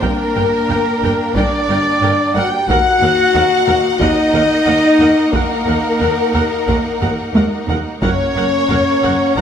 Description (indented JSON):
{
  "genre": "cinematic, epic orchestral film score",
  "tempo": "90 BPM",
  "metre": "4/4",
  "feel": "straight",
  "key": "unclear",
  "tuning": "A4 = 440 Hz",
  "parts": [
    { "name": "warm symphonic violin section", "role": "melody", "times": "0.0-9.4 s", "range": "Bb4 to A#5", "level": "-22 LUFS", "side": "left 3 dB", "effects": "none" },
    { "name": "large flute ensemble", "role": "second line", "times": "0.0-9.4 s", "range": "Bb4 to G5", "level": "-23 LUFS", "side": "left 2 dB", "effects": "none" },
    { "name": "warm symphonic violin section", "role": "second line", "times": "0.0-9.4 s", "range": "Bb4 to A#5", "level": "-25 LUFS", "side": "left 4 dB", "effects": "none" },
    { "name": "rich symphonic viola section", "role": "accompaniment", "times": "0.0-9.4 s", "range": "Bb4 to G5", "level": "-24 LUFS", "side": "right 2 dB", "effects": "none" },
    { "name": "clear symphonic string section", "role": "sustained chords", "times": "0.0-9.4 s", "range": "Bb3 to G5", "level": "-24 LUFS", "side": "equal", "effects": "none" },
    { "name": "warm French horn section", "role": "sustained chords", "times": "0.0-9.4 s", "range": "Bb3 to A#4", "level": "-17 LUFS", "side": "left 2 dB", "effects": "none" },
    { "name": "dark trumpet", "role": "stabs", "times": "0.0-9.4 s", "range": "Bb4 to A#5", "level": "-21 LUFS", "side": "right 2 dB", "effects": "none" },
    { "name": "clear symphonic cello section", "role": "bass", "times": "0.0-9.4 s", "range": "Eb2 to G2", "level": "-24 LUFS", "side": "right 2 dB", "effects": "none" },
    { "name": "rich symphonic double bass section", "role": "bass", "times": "0.0-9.4 s", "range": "F#1 to Eb2", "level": "-25 LUFS", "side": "right 3 dB", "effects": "none" },
    { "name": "taiko ensemble", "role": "drums", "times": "0.0-9.4 s", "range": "none", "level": "-21 LUFS", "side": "equal", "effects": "none" }
  ],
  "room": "wet recital hall reverb, RT60 1.4 s",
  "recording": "none",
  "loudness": "-12 LUFS",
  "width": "side -8 dB against mid",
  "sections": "0.0-9.4 A section",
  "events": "drum fill 7.0-8.0",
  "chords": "0.0 Gm; 2.7 Ebm; 8.0 F#"
}